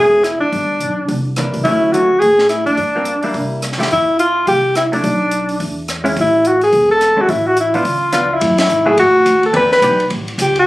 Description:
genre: jazz, small-group swing and bop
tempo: 213 BPM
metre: 4/4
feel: swing 61% on 8ths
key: unclear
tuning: A4 = 440 Hz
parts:
  - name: breathy alto saxophone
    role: melody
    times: 0.0-10.7 s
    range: D4 to B4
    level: -12 LUFS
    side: equal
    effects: none
  - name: hollow-body jazz guitar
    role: accompaniment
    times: 0.0-10.0 s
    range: D3 to G#4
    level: -20 LUFS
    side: equal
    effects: none
  - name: upright bass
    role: bass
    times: 0.0-10.7 s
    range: E1 to A2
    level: -23 LUFS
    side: equal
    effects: none
  - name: compact cocktail drum kit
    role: drums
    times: 0.2-10.6 s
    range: hi-hat, kick drum, ride cymbal, rim click, snare drum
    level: -25 LUFS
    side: equal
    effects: none
room: light reverb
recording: recorded on a phone in the room, club reverb, compression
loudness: -12 LUFS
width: side -17 dB against mid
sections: 0.0-8.4 A section; 8.4-10.7 B section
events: band accent 8.6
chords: 0.0 Amaj7 (rootless); 0.5 G5; 1.1 C9; 1.7 Dmaj7; 2.8 Gm7; 3.3 C7; 3.9 Fmaj7sus2; 5.0 Bm; 5.6 E6; 6.2 A5; 7.9 C#7b9; 8.4 F#m9; 9.5 Em7; 10.1 A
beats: 0.24 | 0.52 0.81 1.09 1.37 | 1.65 1.93 2.22 2.50 | 2.78 3.06 3.35 3.63 | 3.91 4.19 4.47 4.75 | 5.04 5.32 5.60 5.88 | 6.17 6.45 6.73 7.01 | 7.29 7.57 7.86 8.14 | 8.42 8.70 8.98 9.26 | 9.55 9.83 10.11 10.39

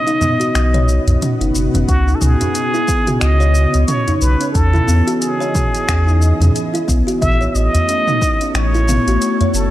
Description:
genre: organic downtempo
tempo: 90 BPM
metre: 4/4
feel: swing 58% on 16ths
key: C# minor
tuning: A4 = 444 Hz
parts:
  - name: trumpet with plunger mute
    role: melody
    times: 0.0-9.7 s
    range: F#4 to E5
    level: -20 LUFS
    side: equal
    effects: tape echo
  - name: ethereal airy pad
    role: sustained chords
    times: 0.0-9.7 s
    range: B2 to D#5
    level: -24 LUFS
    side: left 1 dB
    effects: ensemble chorus, built-in reverb, sidechain pumping
  - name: kalimba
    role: arpeggios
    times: 0.0-9.5 s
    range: B3 to C#5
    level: -20 LUFS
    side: equal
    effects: tape echo
  - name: organic electronic drum kit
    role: drums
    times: 0.1-9.7 s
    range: finger snaps, hi-hat, shaker, toms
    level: -22 LUFS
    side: equal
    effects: overdrive, small room ambience
  - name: udu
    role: percussion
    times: 0.2-9.5 s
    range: none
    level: -19 LUFS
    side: equal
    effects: none
  - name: warm sub bass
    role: bass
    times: 0.5-9.7 s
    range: F#1 to E2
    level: -14 LUFS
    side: equal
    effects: sidechain pumping
  - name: electronic kick drum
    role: drums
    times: 1.9-8.4 s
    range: none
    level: -19 LUFS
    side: equal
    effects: overdrive, small room ambience
room: light reverb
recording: none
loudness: -13 LUFS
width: side -14 dB against mid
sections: 0.0-1.9 A section; 1.9-9.7 B section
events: break 0.0-1.9; filter sweep on kalimba 0.0-1.9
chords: 0.0 B; 1.9 C#7(no3); 4.5 Emaj7; 7.2 A6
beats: 0.55 1.22 | 1.88 2.55 3.22 3.88 | 4.55 5.22 5.88 6.55 | 7.22 7.88 8.55 9.22

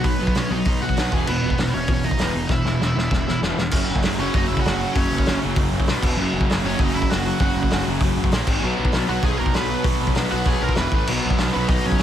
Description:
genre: punk rock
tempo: 196 BPM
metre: 4/4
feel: straight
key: unclear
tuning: A4 = 440 Hz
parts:
  - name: high-gain lead guitar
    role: melody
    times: 0.0-12.0 s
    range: B3 to B5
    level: -26 LUFS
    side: right 1 dB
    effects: distortion
  - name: crunchy overdriven guitar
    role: riff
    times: 0.0-12.0 s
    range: E2 to B3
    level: -27 LUFS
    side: equal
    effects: none
  - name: distorted electric guitar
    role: riff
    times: 0.0-12.0 s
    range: E2 to B3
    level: -27 LUFS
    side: right 10 dB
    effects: distortion
  - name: raw garage guitar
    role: riff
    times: 0.0-12.0 s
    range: E2 to B3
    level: -28 LUFS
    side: left 10 dB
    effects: overdrive
  - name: fuzz picked electric bass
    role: bass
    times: 0.0-12.0 s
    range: E1 to B1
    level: -26 LUFS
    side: equal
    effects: overdrive
  - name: loose indie drum kit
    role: drums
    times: 0.0-12.0 s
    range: crash cymbal, hi-hat, kick drum, snare drum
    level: -22 LUFS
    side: equal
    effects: none
room: little or no reverb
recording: none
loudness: -18 LUFS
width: side -10 dB against mid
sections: 0.0-3.7 A section; 3.7-12.0 B section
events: drum fill 2.5-3.7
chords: 0.0 B; 1.1 E5; 3.7 F#5; 5.9 B5; 6.0 E5; 6.2 F#5; 8.3 A#5; 8.5 G#5; 8.6 B5; 10.8 E5; 10.9 A5; 11.1 B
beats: | 0.05 0.36 0.67 0.97 | 1.28 1.59 1.89 2.20 | 2.51 2.82 3.12 3.43 | 3.74 4.04 4.35 4.66 | 4.96 5.27 5.57 5.88 | 6.18 6.49 6.80 7.10 | 7.41 7.71 8.02 8.32 | 8.63 8.94 9.24 9.55 | 9.85 10.16 10.47 10.77 | 11.08 11.38 11.69 12.00

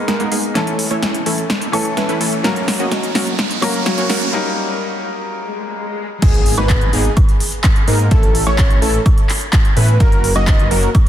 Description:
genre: EDM, festival progressive house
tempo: 127 BPM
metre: 4/4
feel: straight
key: G# minor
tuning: A4 = 441 Hz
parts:
  - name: bright grand piano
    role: accompaniment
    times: 0.0-6.2 s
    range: E3 to A#5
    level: -23 LUFS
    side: left 3 dB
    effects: sidechain pumping, dub echo
  - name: supersaw stab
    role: riff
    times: 0.0-10.9 s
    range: E3 to D#5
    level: -22 LUFS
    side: right 1 dB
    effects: vintage 12-bit sampler grit, sidechain pumping, low-pass filter, dub echo
  - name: riser, swell and impact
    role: sound effects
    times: 1.4-8.1 s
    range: none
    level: -26 LUFS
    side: right 1 dB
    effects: none
  - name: big-room dance drum kit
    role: drums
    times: 0.1-11.1 s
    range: crash cymbal, handclaps, hi-hat, snare drum, woodblock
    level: -21 LUFS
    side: equal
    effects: none
  - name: wide unison lead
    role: arpeggios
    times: 6.2-10.9 s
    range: G#4 to D#5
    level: -21 LUFS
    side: equal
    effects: sidechain pumping, dub echo
  - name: wide detuned saw bass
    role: bass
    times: 6.2-10.9 s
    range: F#1 to A2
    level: -17 LUFS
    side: equal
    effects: chorus, sidechain pumping
  - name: electronic kick drum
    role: drums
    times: 6.2-11.0 s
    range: none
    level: -13 LUFS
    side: equal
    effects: none
room: light reverb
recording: dense, heavily limited modern master, high-pass filter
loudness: -13 LUFS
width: side -11 dB against mid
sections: 0.0-6.2 A section; 6.2-11.1 B section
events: build-up 0.0-6.2; drum fill 0.0-4.3; riser 1.4-4.3; break 4.3-6.2; swell 5.4-6.2; drop 6.2-11.1; impact 6.2-8.1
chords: 0.0 G#madd9; 0.6 A; 2.4 F#; 4.3 D#; 6.2 G#madd9; 8.1 A; 10.0 F#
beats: 0.08 | 0.55 1.03 1.50 1.97 | 2.44 2.92 3.39 3.86 | 4.33 4.81 5.28 5.75 | 6.22 6.70 7.17 7.64 | 8.11 8.59 9.06 9.53 | 10.00 10.47 10.95

